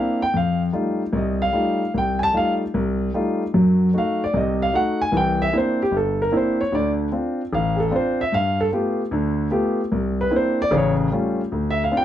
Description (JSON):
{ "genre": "solo jazz", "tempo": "150 BPM", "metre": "4/4", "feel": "swing 67% on 8ths", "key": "unclear", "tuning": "A4 = 440 Hz", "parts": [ { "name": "warm concert grand piano", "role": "solo", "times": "0.0-12.0 s", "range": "G1 to A5", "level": "-19 LUFS", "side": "equal", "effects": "none" } ], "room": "moderate club reverb, RT60 0.8 s", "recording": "dark, warm production", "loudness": "-19 LUFS", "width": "side -11 dB against mid", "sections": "0.0-12.0 A section", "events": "grand piano solo 0.0-12.0", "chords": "0.3 F9; 3.5 F#dim7; 5.1 C9; 6.7 Dm7; 8.3 G9; 9.9 C9; 10.7 Aaug7; 11.5 Dm7", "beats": "| 0.34 0.73 1.14 1.53 | 1.94 2.33 2.73 3.13 | 3.53 3.93 4.33 4.73 | 5.13 5.53 5.93 6.33 | 6.73 7.13 7.53 7.93 | 8.33 8.73 9.13 9.53 | 9.93 10.32 10.72 11.12 | 11.52 11.92" }